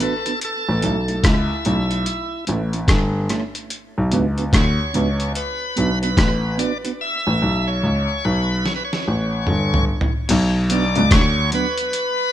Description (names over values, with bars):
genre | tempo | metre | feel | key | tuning
roots reggae | 73 BPM | 4/4 | swing 62% on 16ths | B minor | A4 = 444 Hz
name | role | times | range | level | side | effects
bright tonewheel organ | melody | 0.0-12.3 s | E4 to E5 | -24 LUFS | equal | overdrive, slow rotary speaker, dub echo
mellow electric guitar | accompaniment | 0.0-11.7 s | F#3 to B4 | -26 LUFS | right 5 dB | spring reverb, dub echo
dusty soul sampler-style drum kit | drums | 0.0-12.2 s | crash cymbal, hi-hat, kick drum, rim click, snare drum, toms | -20 LUFS | equal | overdrive, slapback echo
dark concert grand piano | bass | 0.7-11.5 s | G1 to D2 | -20 LUFS | equal | none
electric guitar at the edge of break-up | riff | 10.3-11.4 s | B2 to D3 | -26 LUFS | left 6 dB | none
room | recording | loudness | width
little or no reverb | rough home demo mix | -17 LUFS | side -11 dB against mid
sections
0.0-10.3 A section; 10.3-12.3 B section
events
drums muted 7.0-10.3; drum fill 8.6-10.3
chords
0.4 A; 3.7 Bm; 7.0 A; 10.3 Bm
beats
| 0.42 1.24 2.06 2.89 | 3.71 4.53 5.36 6.18 | 7.00 7.82 8.64 9.47 | 10.29 11.11 11.93